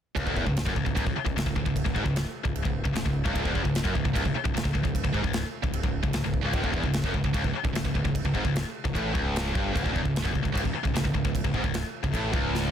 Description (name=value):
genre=heavy metal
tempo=150 BPM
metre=4/4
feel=straight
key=C# minor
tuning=A4 = 439 Hz
part: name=heavy high-gain guitar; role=riff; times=0.2-12.7 s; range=C#2 to A2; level=-30 LUFS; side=left 10 dB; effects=distortion
part: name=high-gain distorted guitar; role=riff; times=0.2-12.7 s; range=C#2 to A2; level=-30 LUFS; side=right 9 dB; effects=distortion
part: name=growling picked electric bass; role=bass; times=0.2-12.7 s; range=C#1 to A1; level=-32 LUFS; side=equal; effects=overdrive
part: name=modern studio drum kit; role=drums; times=0.2-12.6 s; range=crash cymbal, kick drum, snare drum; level=-30 LUFS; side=equal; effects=none
room=small room ambience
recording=dense, heavily limited modern master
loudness=-25 LUFS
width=side -9 dB against mid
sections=0.2-12.7 A section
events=drum fill 6.4, 12.5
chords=none